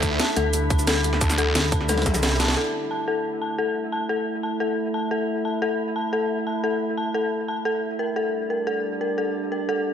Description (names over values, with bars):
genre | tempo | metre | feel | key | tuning
dark technical drum and bass | 177 BPM | 4/4 | straight | unclear | A4 = 440 Hz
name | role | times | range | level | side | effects
metallic inharmonic drone | sustained chords | 0.0-9.9 s | D3 to E4 | -28 LUFS | right 1 dB | chorus, built-in reverb, sidechain pumping
phased detuned saw bass | bass | 0.0-2.6 s | C2 to D2 | -24 LUFS | right 1 dB | phaser, sidechain pumping
breakbeat sampler-style drum kit | drums | 0.0-2.6 s | hi-hat, snare drum | -32 LUFS | equal | none
drum and bass drum kit | drums | 0.0-2.6 s | cabasa, hi-hat, snare drum, toms | -24 LUFS | equal | overdrive, small room ambience
electronic kick drum | drums | 0.0-2.1 s | none | -24 LUFS | right 1 dB | overdrive, small room ambience
dark detuned synth bell | arpeggios | 0.2-9.8 s | A4 to A5 | -25 LUFS | left 3 dB | chorus, sidechain pumping, low-pass filter, dub echo
pulsing pluck wobble bass | bass | 0.4-2.0 s | D2 | -24 LUFS | right 1 dB | chorus
room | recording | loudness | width
moderate lush hall reverb, RT60 1.6 s | none | -22 LUFS | side -8 dB against mid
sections
0.0-2.6 A section; 2.6-9.9 B section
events
drop 0.0-2.6; drum fill 1.9-2.6; band accent 2.5; filter sweep on synth drone 2.6-9.9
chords
0.0 Dsus2; 2.6 A5; 8.0 G5